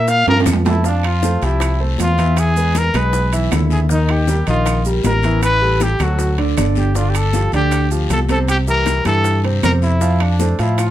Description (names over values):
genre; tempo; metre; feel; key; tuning
Afro-Cuban jazz; 157 BPM; 4/4; straight; F major; A4 = 440 Hz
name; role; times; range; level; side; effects
breathy trumpet; melody; 0.0-10.9 s; D4 to F5; -19 LUFS; equal; none
warm concert grand piano; accompaniment; 0.0-10.9 s; C3 to Bb5; -22 LUFS; right 1 dB; none
fingered electric bass; bass; 0.0-10.9 s; G1 to Bb2; -17 LUFS; equal; none
bongos; percussion; 0.1-10.9 s; none; -28 LUFS; left 5 dB; none
congas; percussion; 0.1-10.9 s; none; -27 LUFS; left 3 dB; none
guiro; percussion; 0.1-10.9 s; none; -34 LUFS; left 8 dB; none
maracas; percussion; 0.1-10.9 s; none; -32 LUFS; right 6 dB; none
timbales; percussion; 0.3-10.9 s; none; -24 LUFS; right 6 dB; none
claves; percussion; 0.5-10.9 s; none; -33 LUFS; right 6 dB; none
room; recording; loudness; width
light reverb; none; -14 LUFS; side -13 dB against mid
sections
0.8-10.9 A section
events
drum fill 0.3-0.8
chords
0.0 Bb5; 0.8 Fadd9; 2.4 E7; 3.9 Ebadd9; 5.4 Asus2; 6.2 D; 7.0 Gsus2; 8.5 C7; 10.0 F6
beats
0.08 0.47 | 0.85 1.23 1.61 1.99 | 2.37 2.76 3.14 3.52 | 3.90 4.28 4.67 5.05 | 5.43 5.81 6.19 6.58 | 6.96 7.34 7.72 8.10 | 8.48 8.87 9.25 9.63 | 10.01 10.39 10.78